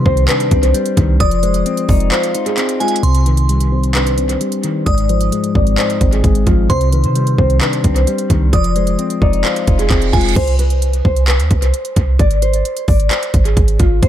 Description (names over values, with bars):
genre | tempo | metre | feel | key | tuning
hip hop, trap | 131 BPM | 4/4 | half-time | C harmonic minor | A4 = 440 Hz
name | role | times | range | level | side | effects
nylon-string guitar | melody | 0.0-14.1 s | F4 to D5 | -19 LUFS | left 1 dB | low-pass filter, dub echo
glassy synth bell | second line | 0.0-10.3 s | Ab5 to Eb6 | -26 LUFS | right 4 dB | chorus, tremolo, dub echo
clean electric guitar | accompaniment | 0.0-10.4 s | Ab2 to F4 | -18 LUFS | left 3 dB | low-pass filter
clean 808-style bass | bass | 0.0-14.1 s | F1 to C3 | -14 LUFS | right 1 dB | none
trap drum kit | drums | 0.1-14.1 s | crash cymbal, handclaps, hi-hat, kick drum | -17 LUFS | right 1 dB | none
reverse cymbal | sound effects | 9.8-10.4 s | none | -26 LUFS | right 9 dB | none
room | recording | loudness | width
digital ambience | echo-heavy mix | -12 LUFS | side -11 dB against mid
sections
0.0-3.0 A section; 3.0-10.4 B section; 10.4-14.1 C section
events
kick muted 2.1-3.0; filter sweep 3.0-10.4; reverse cymbal 9.8-10.4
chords
0.0 Cmadd9; 1.2 Fm7; 3.0 Cmadd9; 4.9 Ab6; 6.7 Cmadd9; 8.5 Fm7; 10.4 N.C.; 12.2 Ab